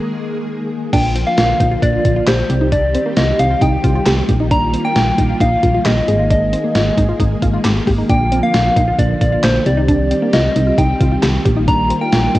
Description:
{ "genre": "synth-pop", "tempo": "134 BPM", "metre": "4/4", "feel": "straight", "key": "Bb mixolydian", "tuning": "A4 = 442 Hz", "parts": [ { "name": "string machine, violas", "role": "sustained chords", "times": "0.0-12.4 s", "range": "D3 to Ab4", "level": "-20 LUFS", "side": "equal", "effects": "ensemble chorus, cassette tape" }, { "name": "soft struck synth lead", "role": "melody", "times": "0.9-12.4 s", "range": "C5 to Bb5", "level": "-18 LUFS", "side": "equal", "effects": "chorus, tremolo, cassette tape, tape echo" }, { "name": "wide unison pluck", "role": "arpeggios", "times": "0.9-12.4 s", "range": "Bb3 to Ab4", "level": "-22 LUFS", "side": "equal", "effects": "phaser, cassette tape, tape echo" }, { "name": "solid FM bass", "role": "bass", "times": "0.9-12.4 s", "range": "Ab1 to C2", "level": "-17 LUFS", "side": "equal", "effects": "none" }, { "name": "gated 80s digital drum machine", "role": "drums", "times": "0.9-12.4 s", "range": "crash cymbal, handclaps, hi-hat, kick drum, snare drum", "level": "-18 LUFS", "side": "equal", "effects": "gated reverb, gated reverb snare, cassette tape" } ], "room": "light reverb, digital ambience", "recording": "home recording on cassette", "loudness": "-12 LUFS", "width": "side -16 dB against mid", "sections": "0.9-12.4 A section", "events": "break 0.0-0.9", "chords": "0.0 Absus2; 0.9 Bb; 2.5 Cm; 4.3 Ebadd9/Bb; 6.1 Absus2; 8.1 Bb; 9.7 Cm; 11.5 Ebadd9/Bb", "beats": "0.04 0.48 | 0.93 1.38 1.83 2.27 | 2.72 3.17 3.62 4.07 | 4.51 4.96 5.41 5.86 | 6.30 6.75 7.20 7.65 | 8.10 8.54 8.99 9.44 | 9.89 10.33 10.78 11.23 | 11.68 12.12" }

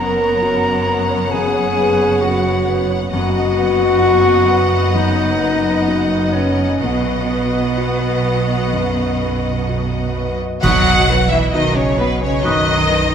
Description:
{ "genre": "cinematic, emotional film score for orchestra", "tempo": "62-67 BPM", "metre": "4/4", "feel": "rubato", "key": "B major", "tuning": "A4 = 440 Hz", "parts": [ { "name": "warm symphonic violin section", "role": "melody", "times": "0.0-13.1 s", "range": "B4 to F#5", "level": "-23 LUFS", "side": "left 2 dB", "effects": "none" }, { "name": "hollow concert flute", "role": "second line", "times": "0.0-12.9 s", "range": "B4 to D#6", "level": "-24 LUFS", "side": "left 2 dB", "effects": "none" }, { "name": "warm clarinet", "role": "second line", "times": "0.0-12.8 s", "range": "B3 to A#4", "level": "-25 LUFS", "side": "right 1 dB", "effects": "none" }, { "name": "warm studio violin section", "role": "second line", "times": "0.0-13.1 s", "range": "B3 to D#5", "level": "-27 LUFS", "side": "equal", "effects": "none" }, { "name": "rich studio viola section", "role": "accompaniment", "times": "0.0-13.0 s", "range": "D#3 to B3", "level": "-27 LUFS", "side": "right 2 dB", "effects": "none" }, { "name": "warm concert grand piano", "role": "accompaniment", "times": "0.0-13.1 s", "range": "B1 to D#5", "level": "-23 LUFS", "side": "left 2 dB", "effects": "none" }, { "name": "mellow French horn section", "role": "sustained chords", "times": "0.0-13.1 s", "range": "B3 to A#4", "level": "-20 LUFS", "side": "left 2 dB", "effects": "none" }, { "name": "rich studio double bass section", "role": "bass", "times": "0.0-13.1 s", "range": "F#1 to B1", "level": "-23 LUFS", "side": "right 4 dB", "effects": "none" }, { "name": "warm symphonic cello section", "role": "bass", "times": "0.0-13.1 s", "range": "F#2 to F#3", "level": "-22 LUFS", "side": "right 2 dB", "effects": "none" }, { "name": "clear oboe", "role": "second line", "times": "10.6-12.8 s", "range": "B4", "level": "-25 LUFS", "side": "right 3 dB", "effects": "none" }, { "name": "clash cymbals and concert bass drum", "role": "percussion", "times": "10.6-12.4 s", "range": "none", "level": "-24 LUFS", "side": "right 1 dB", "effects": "none" }, { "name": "timpani", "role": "percussion", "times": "10.6-11.9 s", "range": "B2", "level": "-24 LUFS", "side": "right 1 dB", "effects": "none" } ], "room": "moderate scoring stage reverb, RT60 1.7 s", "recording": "none", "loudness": "-14 LUFS", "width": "side -8 dB against mid", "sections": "0.0-10.6 A section; 10.6-13.1 B section", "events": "band accent 10.6-11.5", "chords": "0.0 F#sus4; 3.1 B/F#; 6.8 B", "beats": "0.42 1.32 2.22 | 3.13 4.04 4.96 5.88 | 6.83 7.78 8.72 9.68 | 10.63 11.53 12.44" }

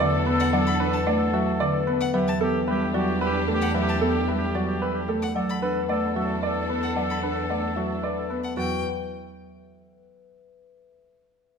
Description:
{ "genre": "classical, minimalist pattern music", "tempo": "112 BPM", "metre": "3/4", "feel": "straight", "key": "E minor", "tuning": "A4 = 442 Hz", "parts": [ { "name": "concert harp", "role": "melody", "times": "0.0-10.2 s", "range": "G4 to F#5", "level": "-31 LUFS", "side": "left 10 dB", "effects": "none" }, { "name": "warm oboe", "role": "second line", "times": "0.0-8.4 s", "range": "G4 to A4", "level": "-32 LUFS", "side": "right 1 dB", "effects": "none" }, { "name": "buzzing marimba with medium mallets", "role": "accompaniment", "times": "0.0-8.8 s", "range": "D3 to D4", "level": "-27 LUFS", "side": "right 1 dB", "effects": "none" }, { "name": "rich studio string section", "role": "sustained chords", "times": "0.0-8.4 s", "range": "D4 to A4", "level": "-33 LUFS", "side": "left 2 dB", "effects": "none" }, { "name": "clear baby grand piano", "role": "arpeggios", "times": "0.0-8.8 s", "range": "F#4 to D5", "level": "-29 LUFS", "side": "right 5 dB", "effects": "none" }, { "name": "rich studio double bass section", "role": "bass", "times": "0.0-8.8 s", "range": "E2", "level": "-30 LUFS", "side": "right 1 dB", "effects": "none" }, { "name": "clear violin", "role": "arpeggios", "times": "0.4-8.8 s", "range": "F#5 to B5", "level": "-35 LUFS", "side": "left 5 dB", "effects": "none" } ], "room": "moderate recital hall reverb, RT60 1.6 s", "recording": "minimal, uncompressed stereo recording", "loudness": "-22 LUFS", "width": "side -6 dB against mid", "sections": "0.0-8.6 A section; 8.6-10.2 B section", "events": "none", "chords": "0.0 Bm7/E; 2.1 Em9; 5.4 Bm7/E; 8.6 Emadd9", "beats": "| 0.53 1.06 1.60 | 2.14 2.67 3.21 | 3.74 4.28 4.82 | 5.35 5.89 6.42 | 6.96 7.49 8.03 | 8.56 9.10 9.64" }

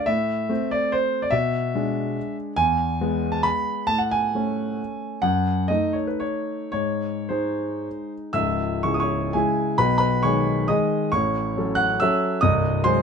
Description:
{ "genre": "classical, romantic triple-time dance for piano with dotted rhythms", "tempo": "101-153 BPM", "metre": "3/4", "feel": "rubato", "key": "C# minor", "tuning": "A4 = 440 Hz", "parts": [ { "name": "warm concert grand piano", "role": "solo", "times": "0.0-13.0 s", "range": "B#0 to F#6", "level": "-21 LUFS", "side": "equal", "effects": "none" } ], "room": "light reverb", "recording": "minimal, uncompressed stereo recording", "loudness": "-21 LUFS", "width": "side -6 dB against mid", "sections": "0.0-8.4 A section; 8.4-13.0 B section", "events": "none", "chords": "0.1 Am; 1.3 E7/B; 2.6 E; 3.9 Amaj7; 5.2 D#dim/F#; 6.7 G#; 8.4 C#m; 9.8 G#m/B; 11.1 F#m/A; 12.4 G#7/B#", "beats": "| 0.07 0.50 0.93 | 1.33 1.75 2.17 | 2.57 3.01 3.46 | 3.89 4.34 4.79 | 5.23 5.69 6.21 | 6.74 7.30 7.86 | 8.37 8.85 9.34 | 9.79 10.23 10.68 | 11.12 11.56 12.00 | 12.41 12.84" }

